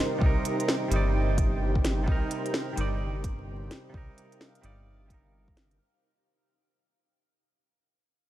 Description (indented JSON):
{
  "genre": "future garage",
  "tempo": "129 BPM",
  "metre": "4/4",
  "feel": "swing 62% on 16ths",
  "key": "C minor",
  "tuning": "A4 = 440 Hz",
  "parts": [
    { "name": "direct-recorded clean electric guitar", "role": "accompaniment", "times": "0.0-5.8 s", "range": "C3 to D5", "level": "-35 LUFS", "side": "right 3 dB", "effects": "sidechain pumping, low-pass filter, tape echo" },
    { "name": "granular cloud pad", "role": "sustained chords", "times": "0.0-5.8 s", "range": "Eb4 to G5", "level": "-33 LUFS", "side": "right 1 dB", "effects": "built-in reverb, sidechain pumping" },
    { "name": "swelling detuned saw bass", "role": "bass", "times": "0.2-5.8 s", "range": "G1 to C2", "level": "-29 LUFS", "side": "equal", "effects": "tube saturation, sidechain pumping" },
    { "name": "electronic kick drum", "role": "drums", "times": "0.2-5.5 s", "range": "none", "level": "-26 LUFS", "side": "equal", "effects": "small room ambience" },
    { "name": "organic electronic drum kit", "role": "drums", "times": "0.5-5.8 s", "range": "hi-hat, snare drum", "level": "-33 LUFS", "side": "equal", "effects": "overdrive, small room ambience" }
  ],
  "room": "light reverb",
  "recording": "vinyl crackle",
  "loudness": "-25 LUFS",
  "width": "side -13 dB against mid",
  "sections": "0.0-5.8 A section",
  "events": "fade-out 0.0-5.8",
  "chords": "0.0 Cm7"
}